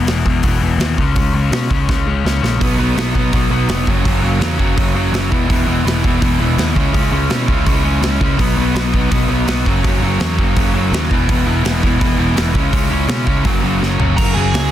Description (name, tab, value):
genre	punk rock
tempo	166 BPM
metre	4/4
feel	straight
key	unclear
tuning	A4 = 440 Hz
part	biting overdriven guitar	riff	0.0-14.7 s	E2 to C#4	-19 LUFS	left 7 dB	none
part	growling picked electric bass	bass	0.0-14.7 s	E1 to B2	-18 LUFS	equal	overdrive
part	big rock drum kit	drums	0.1-14.6 s	crash cymbal, hi-hat, kick drum, snare drum, toms	-18 LUFS	equal	none
part	distorted electric guitar	riff	2.6-14.7 s	F#2 to F#4	-21 LUFS	right 16 dB	distortion
part	smooth overdriven lead guitar	melody	14.2-14.7 s	G#4 to A#5	-20 LUFS	right 2 dB	none
room	little or no reverb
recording	dense, heavily limited modern master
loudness	-13 LUFS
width	side -12 dB against mid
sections	0.0-14.2 A section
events	drum fill 1.9-2.6, 13.8-14.2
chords	0.0 E5; 1.0 C#5; 2.6 B; 3.9 F#; 5.3 E; 6.8 C#m; 8.4 B; 9.7 F#; 11.1 E; 12.6 C#m; 13.5 F#